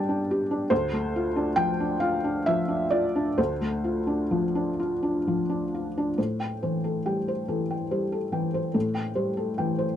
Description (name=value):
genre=neoclassical minimalist piano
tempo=42-48 BPM (dotted quarters)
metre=6/8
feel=rubato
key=A minor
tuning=A4 = 440 Hz
part: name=felt-muted upright piano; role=solo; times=0.0-10.0 s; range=D2 to A5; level=-24 LUFS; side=equal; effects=none
room=light reverb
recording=dry, close 1970s-style studio recording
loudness=-24 LUFS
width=side -10 dB against mid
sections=0.0-6.2 A section; 6.2-10.0 B section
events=none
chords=0.0 G; 0.7 Dm7; 6.2 Am7